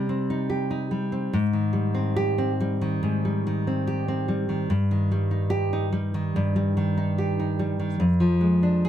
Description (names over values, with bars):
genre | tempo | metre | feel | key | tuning
romantic piece for solo classical guitar | 72 BPM | 4/4 | rubato | unclear | A4 = 442 Hz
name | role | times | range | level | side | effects
nylon-string guitar | solo | 0.0-8.9 s | F2 to Ab4 | -22 LUFS | equal | none
room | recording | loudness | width
light reverb | close, detailed microphones | -22 LUFS | side -10 dB against mid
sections
0.0-8.9 A section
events
none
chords
0.0 Cm; 1.3 Abmaj7; 4.7 Eb/G; 8.0 Ddim/F